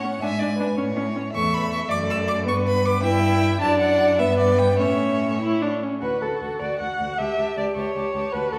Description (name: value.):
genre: quick classical-period movement for string quartet.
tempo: 104 BPM (dotted quarters).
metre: 6/8.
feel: rubato.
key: D major.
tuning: A4 = 441 Hz.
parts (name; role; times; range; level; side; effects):
clear violin; melody; 0.0-8.6 s; D5 to E6; -30 LUFS; equal; none.
rich violin; second line; 0.0-8.6 s; A4 to F#5; -26 LUFS; equal; none.
rich viola; accompaniment; 0.0-8.6 s; A3 to G4; -28 LUFS; equal; none.
warm cello; bass; 0.0-8.6 s; C#2 to A2; -29 LUFS; equal; none.
room: wet recital hall reverb, RT60 1.6 s.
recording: recorded in a church or concert hall.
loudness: -22 LUFS.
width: mono.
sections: 0.0-6.0 A section; 6.0-8.6 B section.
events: none.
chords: 0.2 G#dim; 0.8 A; 1.3 A5/E; 1.9 D/F#; 2.5 G; 3.0 Em/G; 3.6 D/F#; 4.2 G; 4.8 A; 6.0 D; 7.2 A7/C#.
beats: | 0.22 0.77 | 1.33 1.90 | 2.46 3.04 | 3.61 4.20 | 4.79 5.41 | 6.02 6.60 | 7.18 7.76 | 8.33.